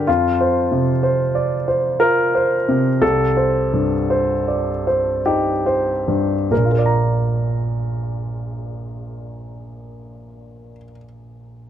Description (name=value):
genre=classical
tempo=47-65 BPM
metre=3/4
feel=rubato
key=Bb major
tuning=A4 = 440 Hz
part: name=warm baby grand piano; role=accompaniment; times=0.0-11.7 s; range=Bb1 to Bb5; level=-17 LUFS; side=equal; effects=none
room=light reverb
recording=close, detailed microphones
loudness=-16 LUFS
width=side -10 dB against mid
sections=0.0-6.5 A section; 6.5-10.3 B section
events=slowing down 0.0-6.5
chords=0.1 F5; 3.0 Cm; 6.5 Bb